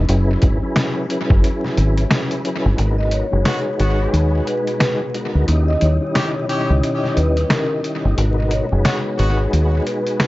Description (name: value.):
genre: hip hop, boom-bap hip-hop.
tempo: 89 BPM.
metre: 4/4.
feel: swing 61% on 16ths.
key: G# minor.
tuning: A4 = 437 Hz.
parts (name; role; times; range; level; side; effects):
mellow tonewheel organ; accompaniment; 0.0-10.3 s; D#3 to D#5; -22 LUFS; left 1 dB; chorus vibrato, fast rotary speaker, cassette tape, tape echo.
deep dub fingered electric bass; bass; 0.0-9.8 s; F#1 to D#2; -16 LUFS; equal; none.
trip hop sampler-style drum kit; drums; 0.1-10.3 s; hi-hat, kick drum, snare drum; -20 LUFS; equal; tape echo.
hollow soft pad; sustained chords; 2.8-10.3 s; B2 to F#4; -31 LUFS; right 1 dB; none.
vibraphone with soft mallets; melody; 3.0-10.3 s; A#4 to D#5; -24 LUFS; left 1 dB; tape echo.
warm trumpet section; stabs; 3.5-9.4 s; B3 to G4; -28 LUFS; left 1 dB; tape echo.
room: little or no reverb.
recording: echo-heavy mix, vinyl crackle, nothing above 7.6 kHz.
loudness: -16 LUFS.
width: side -18 dB against mid.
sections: 0.0-2.8 A section; 2.8-10.3 B section.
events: kick muted 1.4-2.8, 2.8-10.3.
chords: 0.1 F#9sus4; 2.8 G#m7; 5.5 D#7b9; 8.2 G#m7.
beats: | 0.08 0.76 1.43 2.11 | 2.78 3.46 4.13 4.80 | 5.48 6.15 6.83 7.50 | 8.17 8.85 9.52 10.20.